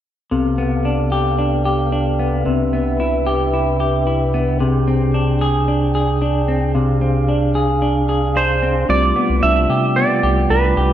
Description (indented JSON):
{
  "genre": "dream pop",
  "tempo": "112 BPM",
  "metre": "4/4",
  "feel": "straight",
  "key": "unclear",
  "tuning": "A4 = 439 Hz",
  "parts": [
    { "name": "mellow tonewheel organ", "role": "sustained chords", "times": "0.3-10.9 s", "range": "C2 to G5", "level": "-18 LUFS", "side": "equal", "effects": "fast rotary speaker" },
    { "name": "semi-hollow electric guitar", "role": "arpeggios", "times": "0.3-10.9 s", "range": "C3 to Ab4", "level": "-19 LUFS", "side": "left 2 dB", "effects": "lush chorus, slapback echo" },
    { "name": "clean lap steel guitar", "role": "melody", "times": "8.4-10.9 s", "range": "B4 to E5", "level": "-17 LUFS", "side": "right 4 dB", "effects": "slapback echo" },
    { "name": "round analog bass", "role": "bass", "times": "8.9-10.9 s", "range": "C2 to C3", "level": "-18 LUFS", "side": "equal", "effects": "none" }
  ],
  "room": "moderate plate reverb, RT60 2.7 s",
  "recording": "none",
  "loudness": "-15 LUFS",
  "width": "side -11 dB against mid",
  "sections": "0.3-8.9 A section; 8.9-10.9 B section",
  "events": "none",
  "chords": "0.3 G7/C; 2.5 Cmaj7; 4.6 Fm6/C; 8.9 G7/C"
}